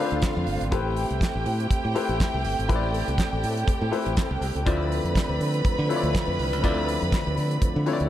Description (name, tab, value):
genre	disco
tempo	122 BPM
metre	4/4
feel	swing 56% on 16ths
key	D dorian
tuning	A4 = 441 Hz
part	warm studio violin section	second line	0.0-8.1 s	F4 to B5	-30 LUFS	right 2 dB	none
part	clear grand piano	accompaniment	0.0-8.1 s	D3 to D5	-29 LUFS	left 5 dB	none
part	percussive tonewheel organ	sustained chords	0.0-8.1 s	D3 to G4	-32 LUFS	right 1 dB	chorus vibrato, fast rotary speaker
part	modern bright fingered electric bass	bass	0.1-8.1 s	G1 to D3	-27 LUFS	equal	none
part	damped 70s drum kit	drums	0.1-8.1 s	handclaps, hi-hat, kick drum, snare drum	-27 LUFS	equal	none
room	light reverb, studio reverb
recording	none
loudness	-22 LUFS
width	side -12 dB against mid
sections	0.0-8.1 A section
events	none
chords	0.0 Dm7; 0.7 Am7; 4.7 Dm7